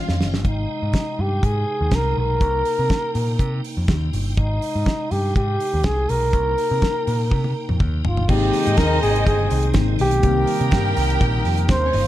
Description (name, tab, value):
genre	disco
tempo	122 BPM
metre	4/4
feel	straight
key	unclear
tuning	A4 = 441 Hz
part	rich symphonic violin section	second line	0.0-0.4, 8.3-12.1 s	Db4 to G5	-27 LUFS	right 1 dB	none
part	barky tine electric piano	accompaniment	0.0-0.5, 8.3-12.1 s	Eb3 to G4	-26 LUFS	left 8 dB	phaser
part	tonewheel organ	sustained chords	0.0-12.1 s	C3 to G5	-31 LUFS	right 1 dB	chorus vibrato, slow rotary speaker
part	picked electric bass	bass	0.1-12.1 s	Gb1 to C3	-22 LUFS	equal	none
part	damped 70s drum kit	drums	0.1-12.1 s	crash cymbal, hi-hat, kick drum, snare drum, toms	-22 LUFS	equal	none
part	breathy flugelhorn	melody	0.5-12.1 s	Eb4 to C5	-23 LUFS	equal	none
part	warm horn section	stabs	8.3-11.9 s	G3 to G5	-29 LUFS	right 2 dB	slapback echo
room	small room ambience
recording	dark, warm production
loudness	-18 LUFS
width	side -14 dB against mid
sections	0.4-8.3 A section; 8.3-12.1 B section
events	drum fill 0.0-0.4, 7.3-8.3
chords	0.4 Abmaj7; 2.4 Cm7; 4.4 Abmaj7; 6.3 Cm7; 8.3 Abmaj7; 10.2 Cm7